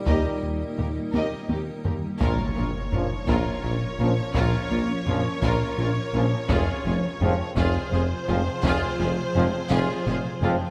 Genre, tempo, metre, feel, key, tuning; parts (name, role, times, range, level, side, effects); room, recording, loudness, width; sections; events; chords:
cinematic, hybrid orchestral and electronic film score; 56 BPM (dotted quarters); 6/8; straight; Bb dorian; A4 = 441 Hz
granular cloud pad; sustained chords; 0.0-10.7 s; C3 to Bb4; -36 LUFS; equal; built-in reverb
mellow French horn section; sustained chords; 0.0-10.5 s; Ab3 to Eb4; -36 LUFS; equal
mellow trombone section; sustained chords; 0.0-10.5 s; F2 to G3; -35 LUFS; equal
warm symphonic violin section; melody; 0.1-10.7 s; G4 to Eb5; -35 LUFS; equal
rich symphonic violin section; second line; 0.1-10.5 s; Eb4 to Bb4; -38 LUFS; equal
clear symphonic viola section; accompaniment; 0.1-10.5 s; F4 to G4; -37 LUFS; equal
smooth synth bass; riff; 0.1-10.6 s; Eb2 to Bb3; -31 LUFS; equal
clear symphonic double bass section; bass; 0.1-10.5 s; F1 to Eb2; -34 LUFS; equal
rich symphonic cello section; bass; 0.1-10.5 s; Eb2 to Bb2; -34 LUFS; equal
warm tuba; bass; 0.1-10.6 s; F1 to Eb2; -34 LUFS; equal
solo taiko drums; drums; 0.1-10.7 s; -32 LUFS; equal
impact; sound effects; 2.2-4.4 s; -36 LUFS; equal
moderate scoring stage reverb, RT60 1.8 s; -25 LUFS; mono
0.0-2.2 A section; 2.2-10.7 B section
drum fill 1.1-2.2, 9.7-10.7; impact 2.2-4.4
0.0 Eb; 2.2 Bbm; 6.5 Fm